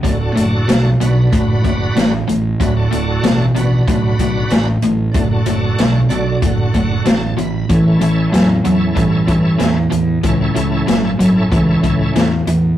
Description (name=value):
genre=blues rock power trio and southern rock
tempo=94 BPM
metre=4/4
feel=straight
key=D major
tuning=A4 = 440 Hz
part: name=bright tonewheel organ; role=sustained chords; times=0.0-12.3 s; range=C#4 to B5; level=-22 LUFS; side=right 1 dB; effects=slow rotary speaker, chorus vibrato
part: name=overdriven electric guitar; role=riff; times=0.0-12.8 s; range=D2 to F#3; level=-15 LUFS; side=equal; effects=none
part: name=fuzz fingered electric bass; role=bass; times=0.0-12.7 s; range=D1 to G2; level=-21 LUFS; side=equal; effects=overdrive
part: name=vintage drum kit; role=drums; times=0.0-12.6 s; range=hi-hat, kick drum, snare drum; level=-18 LUFS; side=equal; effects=none
room=moderate small room reverb, RT60 0.6 s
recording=rough rehearsal-room recording, warm saturation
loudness=-12 LUFS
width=side -12 dB against mid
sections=0.0-12.8 A section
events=tonewheel organ fill 5.8-7.7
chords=0.0 D; 7.7 A